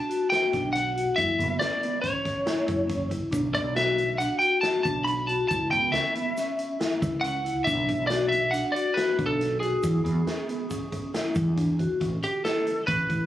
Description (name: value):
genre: progressive instrumental, band music in an uneven meter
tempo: 138 BPM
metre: 5/4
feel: straight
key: unclear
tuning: A4 = 440 Hz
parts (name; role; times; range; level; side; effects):
- lightly driven lead guitar; melody; 0.0-13.3 s; G4 to B5; -26 LUFS; equal; plate reverb
- vibraphone with soft mallets; arpeggios; 0.1-13.2 s; B3 to F#4; -29 LUFS; left 2 dB; plate reverb, analog delay
- swinging big-band drum kit; drums; 0.1-13.2 s; hi-hat, kick drum, snare drum; -34 LUFS; equal; none
- woody fretless electric bass; bass; 0.5-13.3 s; F#1 to E2; -29 LUFS; right 1 dB; none
- egg shaker; percussion; 3.3-11.6 s; none; -48 LUFS; right 1 dB; none
room: moderate studio reverb, RT60 0.6 s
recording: recorded on a phone in the room, club ambience, compression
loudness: -23 LUFS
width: side -13 dB against mid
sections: 0.0-12.0 A section; 12.0-13.3 B section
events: lead electric guitar solo 12.0-13.3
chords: 0.0 Bm7; 1.2 F#5; 3.3 Bm; 5.5 C#m; 7.7 Bm; 9.8 E; 12.0 Aadd9